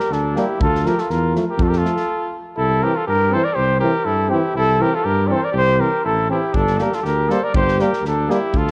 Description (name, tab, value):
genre	balkan folk, Balkan brass band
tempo	121 BPM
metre	2/4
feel	straight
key	unclear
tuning	A4 = 439 Hz
part	mellow cornet	melody	0.0-8.7 s	G4 to D5	-22 LUFS	equal	none
part	bright trumpet	second line	0.0-8.7 s	D4 to Bb4	-29 LUFS	equal	none
part	natural country drum kit	percussion	0.0-2.0, 6.5-8.7 s	kick drum, snare drum	-26 LUFS	equal	none
part	mellow tuba	bass	0.1-8.7 s	G1 to G2	-24 LUFS	equal	none
part	bright trombone	accompaniment	0.4-8.4 s	A3 to C4	-30 LUFS	equal	none
part	mellow euphonium	accompaniment	0.4-8.4 s	E3 to G3	-28 LUFS	equal	none
room	moderate concert hall reverb, RT60 2.3 s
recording	worn, warbling old tape, cassette tape, warbly pitch drift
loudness	-18 LUFS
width	mono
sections	0.0-2.6 A section; 2.6-8.7 A section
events	stop 2.1-2.6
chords	0.0 Gm; 0.6 Dm; 1.6 F; 2.6 C; 6.5 Gm